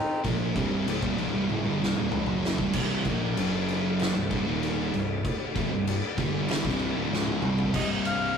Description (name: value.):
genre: stoner and doom metal.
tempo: 96 BPM.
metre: 4/4.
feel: straight.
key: C minor.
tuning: A4 = 439 Hz.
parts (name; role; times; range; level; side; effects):
melodica; melody; 0.0-0.2, 7.8-8.4 s; C4 to F5; -29 LUFS; left 2 dB; none.
high-gain distorted guitar; riff; 0.2-8.4 s; C2 to Eb4; -36 LUFS; equal; distortion.
thick fuzz guitar; riff; 0.2-8.4 s; C2 to Bb3; -30 LUFS; left 4 dB; distortion.
fuzz picked electric bass; bass; 0.2-8.3 s; C1 to Bb1; -35 LUFS; right 1 dB; overdrive.
oversized low-tuned drum kit; drums; 0.2-8.2 s; crash cymbal, kick drum, ride cymbal, snare drum, toms; -30 LUFS; left 1 dB; none.
thick fuzz guitar; riff; 0.3-8.4 s; C2 to Bb3; -31 LUFS; right 8 dB; distortion.
room: moderate stone room reverb, RT60 1.1 s.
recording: rough rehearsal-room recording, tube saturation.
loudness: -25 LUFS.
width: side -7 dB against mid.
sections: 0.0-2.7 A section; 2.7-7.7 B section.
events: melodica solo 0.0-2.7; drum fill 1.5-2.7, 7.1-7.7.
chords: 0.0 Cm; 2.7 C5; 3.4 F#5; 4.2 Cm.